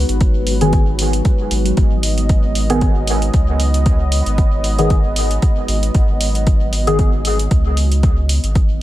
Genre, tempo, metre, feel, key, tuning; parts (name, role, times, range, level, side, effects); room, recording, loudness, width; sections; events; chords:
dub techno; 115 BPM; 4/4; swing 56% on 16ths; G# minor; A4 = 441 Hz
dark analog pad; sustained chords; 0.0-8.8 s; G#3 to D#5; -25 LUFS; equal; chorus, sidechain pumping
pure sine sub bass; bass; 0.0-8.8 s; G#1 to C#2; -18 LUFS; equal; sidechain pumping
bubbling stepped-filter texture; texture; 0.0-8.8 s; F#3 to F#4; -27 LUFS; right 1 dB; chorus, built-in reverb, sidechain pumping
electronic hi-hat; drums; 0.1-8.7 s; -25 LUFS; right 1 dB
electronic kick drum; drums; 0.2-8.7 s; -15 LUFS; equal; overdrive
deep mellow chord stab; stabs; 0.6-7.0 s; D#3 to G#4; -20 LUFS; left 1 dB; chorus, phaser, sidechain pumping, dub echo
digital ambience; -13 LUFS; side -15 dB against mid
0.0-8.8 A section
0.0 G#m